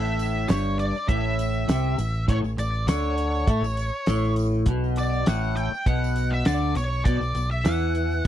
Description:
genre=psychedelic rock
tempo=100 BPM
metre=4/4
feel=straight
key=A mixolydian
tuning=A4 = 440 Hz
part: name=octave-fuzz lead guitar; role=melody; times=0.0-8.3 s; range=C#5 to G5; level=-29 LUFS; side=equal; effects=wah, distortion, slapback echo
part: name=twangy electric guitar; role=riff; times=0.0-8.2 s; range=G2 to A3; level=-27 LUFS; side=equal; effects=flanger, double-tracked left and right
part: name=deep dub picked electric bass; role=bass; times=0.0-8.2 s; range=G1 to A2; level=-26 LUFS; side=equal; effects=none
part: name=tambourine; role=percussion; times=0.0-8.2 s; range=none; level=-48 LUFS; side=right 18 dB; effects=none
part: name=cloth-damped thuddy drum kit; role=drums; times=0.2-8.3 s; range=hi-hat, kick drum, snare drum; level=-23 LUFS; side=equal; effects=none
room=studio reverb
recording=dry, close 1970s-style studio recording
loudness=-22 LUFS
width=side -11 dB against mid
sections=0.0-8.3 A section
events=none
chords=0.0 A7; 4.7 Bm7/A

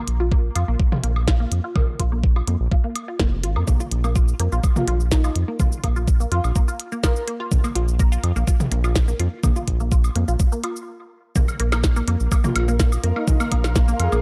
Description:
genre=minimal techno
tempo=125 BPM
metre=4/4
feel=straight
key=unclear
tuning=A4 = 443 Hz
part: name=resonant blip pluck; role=riff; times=0.0-14.2 s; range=Bb3 to F4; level=-32 LUFS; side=equal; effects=phaser, subtle chorus, cassette tape, sidechain pumping, analog delay
part: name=round analog bass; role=bass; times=0.1-14.2 s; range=F1 to F2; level=-24 LUFS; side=equal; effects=sidechain pumping
part: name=minimal click drum kit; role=drums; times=0.1-14.2 s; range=hi-hat, shaker, snare drum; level=-30 LUFS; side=equal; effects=overdrive
part: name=electronic kick drum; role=drums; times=0.3-13.9 s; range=none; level=-21 LUFS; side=equal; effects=none
part: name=electronic woodblock and toms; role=percussion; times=0.6-14.2 s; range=none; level=-32 LUFS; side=equal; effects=analog delay
part: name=breathy flute-like synth lead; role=melody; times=4.8-7.2, 12.4-14.2 s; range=Eb4 to Bb4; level=-32 LUFS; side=equal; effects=ensemble chorus, analog delay
part: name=granular cloud pad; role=texture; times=12.1-14.2 s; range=Bb4 to C6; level=-33 LUFS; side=equal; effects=built-in reverb, sidechain pumping
room=digital ambience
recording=dry, gritty hardware recording, transformer saturation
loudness=-21 LUFS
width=mono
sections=0.0-11.4 A section; 11.4-14.2 B section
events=stop 10.9-11.4; drop 11.4-14.2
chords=0.0 Bb5

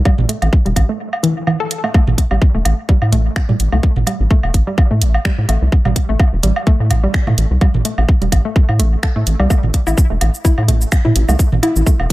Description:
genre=minimal techno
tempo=127 BPM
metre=4/4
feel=swing 55% on 16ths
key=A minor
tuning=A4 = 441 Hz
part: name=hollow square pluck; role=riff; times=0.1-11.9 s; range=E3 to A4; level=-21 LUFS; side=equal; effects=chorus, sidechain pumping, dub echo
part: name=electronic kick drum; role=drums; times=0.1-12.1 s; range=none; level=-12 LUFS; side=equal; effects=none
part: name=electronic woodblock and toms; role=percussion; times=0.1-12.1 s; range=none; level=-22 LUFS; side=right 2 dB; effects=dub echo
part: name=rubbery square bass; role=bass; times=0.2-12.1 s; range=E1 to A2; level=-15 LUFS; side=equal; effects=tube saturation, sidechain pumping
part: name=garage drum kit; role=drums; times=0.3-12.1 s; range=finger snaps, hi-hat, shaker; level=-22 LUFS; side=right 1 dB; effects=none
room=little or no reverb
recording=echo-heavy mix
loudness=-12 LUFS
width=side -18 dB against mid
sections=0.0-12.1 A section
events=break 1.0-1.9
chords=0.0 A5

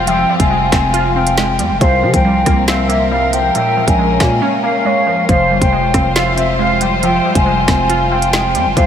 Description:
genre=hip hop, drill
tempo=138 BPM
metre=4/4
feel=half-time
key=F harmonic minor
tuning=A4 = 440 Hz
part: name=warm velvety synth lead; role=second line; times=0.0-8.9 s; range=Bb4 to G5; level=-21 LUFS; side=left 2 dB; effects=chorus, diffuse ambient delay
part: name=glassy wavetable pluck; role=accompaniment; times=0.0-8.9 s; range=Bb2 to F4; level=-19 LUFS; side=right 2 dB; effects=chorus, low-pass filter
part: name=dark studio string section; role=sustained chords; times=0.0-8.9 s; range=F3 to C5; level=-21 LUFS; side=left 2 dB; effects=none
part: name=growling 808-style bass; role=bass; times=0.0-8.9 s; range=E1 to C3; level=-18 LUFS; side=equal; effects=none
part: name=breathy mellow silver concert flute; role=melody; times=0.1-8.9 s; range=E5 to Ab5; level=-16 LUFS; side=left 1 dB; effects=low-pass filter, diffuse ambient delay
part: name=drill drum kit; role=drums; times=0.1-8.9 s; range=hi-hat, kick drum, rim click, snare drum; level=-19 LUFS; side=equal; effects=none
room=wet huge ambient reverb, RT60 8.8 s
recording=dreamy mix soaked in reverb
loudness=-11 LUFS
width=side -8 dB against mid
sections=0.0-8.9 A section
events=drums muted 4.4-5.3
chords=0.0 Fmadd9; 1.8 C7sus4; 3.5 Bbm7; 5.3 Fmadd9

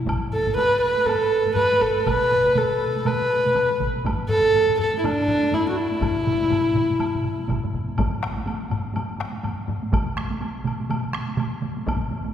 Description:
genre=japanese traditional, taiko drum ensemble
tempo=122 BPM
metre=4/4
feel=swing 60% on 16ths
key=E suspended pentatonic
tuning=A4 = 440 Hz
part: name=taiko ensemble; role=percussion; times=0.1-12.3 s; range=none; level=-33 LUFS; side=right 2 dB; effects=none
part: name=taiko ensemble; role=percussion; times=0.1-12.3 s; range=none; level=-30 LUFS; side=left 2 dB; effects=none
part: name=taiko ensemble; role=percussion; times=0.1-12.0 s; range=none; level=-29 LUFS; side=equal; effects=none
part: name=woodblock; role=percussion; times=0.1-12.0 s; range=none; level=-35 LUFS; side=equal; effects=none
part: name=dark viola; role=melody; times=0.3-7.5 s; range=D4 to B4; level=-20 LUFS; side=equal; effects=none
part: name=taiko ensemble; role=percussion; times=2.1-11.8 s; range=none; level=-29 LUFS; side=right 2 dB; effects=none
room=wet church reverb, RT60 2.8 s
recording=recorded in a church or concert hall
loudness=-20 LUFS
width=side -9 dB against mid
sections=0.0-8.0 A section; 8.0-12.3 B section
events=speeding up 0.0-12.3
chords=none

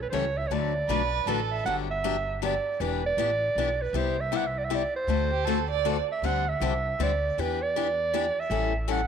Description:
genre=acoustic string swing (jazz manouche)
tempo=158 BPM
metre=3/4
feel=swing 62% on 8ths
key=G major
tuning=A4 = 438 Hz
part: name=warm clarinet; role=melody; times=0.0-9.1 s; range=B4 to F#5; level=-28 LUFS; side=right 4 dB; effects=none
part: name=upright bass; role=bass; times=0.0-9.1 s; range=E1 to E2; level=-32 LUFS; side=equal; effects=none
part: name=picked steel-string acoustic guitar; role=accompaniment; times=0.1-9.0 s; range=C3 to B4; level=-31 LUFS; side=left 12 dB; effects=none
part: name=dark violin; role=second line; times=0.9-1.7, 5.3-5.9 s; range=G4 to D5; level=-30 LUFS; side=right 12 dB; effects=none
room=moderate spring reverb, RT60 2.3 s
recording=1960s-style stereo with parts hard left and right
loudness=-25 LUFS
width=side -7 dB against mid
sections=0.0-1.7 A section; 1.7-9.1 B section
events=none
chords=0.0 A7; 0.5 D6; 1.7 Gmaj7; 2.8 Em7; 3.9 Cmaj7; 5.1 D7; 6.2 D7sus4; 7.4 Em7; 8.5 A7

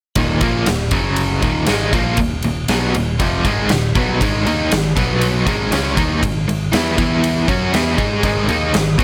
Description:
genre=hard rock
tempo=119 BPM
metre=4/4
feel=straight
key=unclear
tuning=A4 = 437 Hz
part: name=cranked stack guitar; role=riff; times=0.2-9.0 s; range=Eb2 to Ab4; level=-22 LUFS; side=equal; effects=overdrive
part: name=overdriven electric guitar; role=riff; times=0.2-9.0 s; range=Eb2 to Ab4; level=-23 LUFS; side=equal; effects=tremolo
part: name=picked electric bass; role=bass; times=0.2-9.0 s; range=Eb1 to Ab2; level=-25 LUFS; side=equal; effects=none
part: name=huge arena drum kit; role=drums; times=0.2-9.0 s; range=kick drum, ride cymbal, snare drum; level=-22 LUFS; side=equal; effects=none
part: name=percussive tonewheel organ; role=sustained chords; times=8.2-9.0 s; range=F#4 to Eb6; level=-30 LUFS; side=equal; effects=none
room=light reverb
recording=none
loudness=-17 LUFS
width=mono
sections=0.2-9.0 A section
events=none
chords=0.2 Eb5; 0.9 Gb5; 1.4 Ebm; 4.2 Ab5; 5.0 B5; 5.5 Ab5; 7.0 E5; 7.5 Ab5

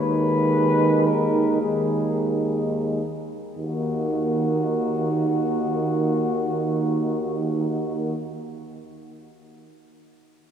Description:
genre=classical, hymn-like piece for brass band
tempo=28-39 BPM (dotted quarters)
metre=12/8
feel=rubato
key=Eb minor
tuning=A4 = 440 Hz
part: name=mellow flugelhorn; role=melody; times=0.0-8.2 s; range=Gb4 to Cb5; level=-28 LUFS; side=left 6 dB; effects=none
part: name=dark French horn section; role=second line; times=0.0-8.1 s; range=Eb4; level=-28 LUFS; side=right 7 dB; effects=none
part: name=mellow euphonium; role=accompaniment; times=0.0-8.1 s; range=Eb3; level=-28 LUFS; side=right 3 dB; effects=none
part: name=warm euphonium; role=accompaniment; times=0.0-8.1 s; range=Ab3 to Bb3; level=-29 LUFS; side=left 1 dB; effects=none
part: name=clear tuba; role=bass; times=0.0-8.1 s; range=Eb2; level=-27 LUFS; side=left 1 dB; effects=none
room=wet cathedral reverb, RT60 4.6 s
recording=recorded in a church or concert hall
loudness=-20 LUFS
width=side -8 dB against mid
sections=0.0-3.6 A section; 3.6-10.5 B section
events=slowing down 0.0-3.6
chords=0.0 Abm/Eb; 3.6 Ebm

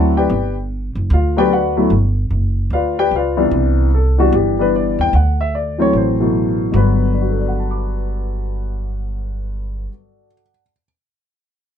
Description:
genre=jazz piano trio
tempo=149 BPM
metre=4/4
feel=swing 65% on 8ths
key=G major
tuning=A4 = 441 Hz
part: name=warm baby grand piano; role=melody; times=0.0-10.8 s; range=C2 to D6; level=-17 LUFS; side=left 3 dB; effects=none
part: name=upright bass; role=bass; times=0.0-9.9 s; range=F#1 to Eb2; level=-18 LUFS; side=right 1 dB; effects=none
room=light reverb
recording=close, detailed microphones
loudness=-14 LUFS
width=side -8 dB against mid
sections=0.0-3.5 A section; 3.5-6.7 B section; 6.7-10.0 C section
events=none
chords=0.3 Gmaj7; 3.5 Cmaj7; 5.1 D7; 6.7 Gmaj7

